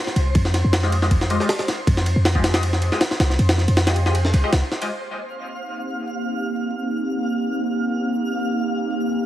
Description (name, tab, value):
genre	drum and bass, jungle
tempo	158 BPM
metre	4/4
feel	straight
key	C minor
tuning	A4 = 445 Hz
part	twinkling granular texture	texture	0.0-9.3 s	C5 to F6	-31 LUFS	equal	built-in reverb
part	jungle sampler-style drum kit	drums	0.1-4.9 s	kick drum, ride cymbal, snare drum	-21 LUFS	equal	overdrive
part	warm 808-style bass	bass	0.2-4.6 s	C2 to F2	-19 LUFS	equal	none
part	band-passed chord stab	stabs	0.8-4.9 s	Ab3 to Eb5	-28 LUFS	left 2 dB	phaser, wide subtle chorus, cassette tape, dub echo
part	ethereal airy pad	sustained chords	5.5-9.3 s	Bb3 to G4	-23 LUFS	right 1 dB	ensemble chorus, built-in reverb, vintage 12-bit sampler grit
room	light reverb, digital ambience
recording	heavily compressed radio sound, vinyl crackle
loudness	-18 LUFS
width	side -13 dB against mid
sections	0.0-4.9 A section; 4.9-9.3 B section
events	kick drops out 4.2-4.9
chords	0.0 Fm9; 4.9 Cm7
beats	| 0.35 0.73 1.11 1.49 | 1.87 2.25 2.63 3.01 | 3.39 3.77 4.15 4.53 | 4.91 5.29 5.67 6.05 | 6.43 6.81 7.19 7.57 | 7.95 8.33 8.71 9.09